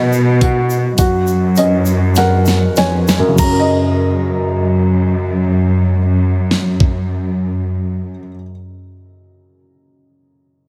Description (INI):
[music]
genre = pop ballad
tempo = 48-53 BPM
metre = 4/4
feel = straight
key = F# major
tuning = A4 = 439 Hz
[part]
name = warm concert grand piano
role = melody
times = 0.0-8.3 s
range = F#5 to A#5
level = -31 LUFS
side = equal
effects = tape echo
[part]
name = dark upright piano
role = accompaniment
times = 0.0-10.7 s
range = F#2 to G#5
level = -20 LUFS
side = equal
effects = none
[part]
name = warm studio cello section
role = bass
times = 0.0-8.3 s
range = E#2 to B2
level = -17 LUFS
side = equal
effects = none
[part]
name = egg shaker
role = percussion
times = 0.1-4.0 s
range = none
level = -33 LUFS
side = equal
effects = none
[part]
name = smooth R&B drum kit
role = drums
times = 0.4-7.1 s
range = crash cymbal, hi-hat, kick drum, snare drum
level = -18 LUFS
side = equal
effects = none
[sound]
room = small room ambience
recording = heavily compressed radio sound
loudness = -15 LUFS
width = mono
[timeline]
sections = 0.0-3.4 A section; 3.4-8.4 B section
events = slowing down 0.0-3.4; upright piano fill 1.0-3.4; drum fill 2.2-3.4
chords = 0.0 B; 1.0 F#; 3.4 F#6